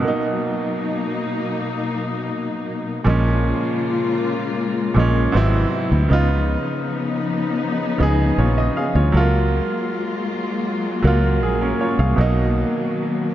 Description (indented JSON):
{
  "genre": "contemporary R&B",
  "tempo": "79 BPM",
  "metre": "4/4",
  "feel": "straight",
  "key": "Bb phrygian",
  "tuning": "A4 = 440 Hz",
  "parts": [
    { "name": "clear baby grand piano", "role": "accompaniment", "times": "0.0-13.3 s", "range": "Ab2 to F5", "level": "-22 LUFS", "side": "right 3 dB", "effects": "none" },
    { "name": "warm symphonic string section", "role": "sustained chords", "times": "0.0-13.3 s", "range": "B2 to F4", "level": "-23 LUFS", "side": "left 3 dB", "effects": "none" },
    { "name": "fingered electric bass", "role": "bass", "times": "3.1-12.6 s", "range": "Ab1 to D2", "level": "-17 LUFS", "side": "equal", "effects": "none" }
  ],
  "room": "light reverb, small room ambience",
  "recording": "dark, warm production, nothing above 7.5 kHz",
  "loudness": "-18 LUFS",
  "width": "side -12 dB against mid",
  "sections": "0.0-3.1 A section; 3.1-13.3 B section",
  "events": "none",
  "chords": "0.0 Bmaj7; 3.1 Bbm7; 5.3 Ab7alt; 6.1 Db9; 9.1 Gbmaj9/Db; 12.2 Bmaj7",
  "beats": "| 0.02 0.78 1.54 2.30 | 3.06 3.82 4.58 5.34 | 6.10 6.86 7.62 8.38 | 9.14 9.90 10.66 11.42 | 12.18 12.94"
}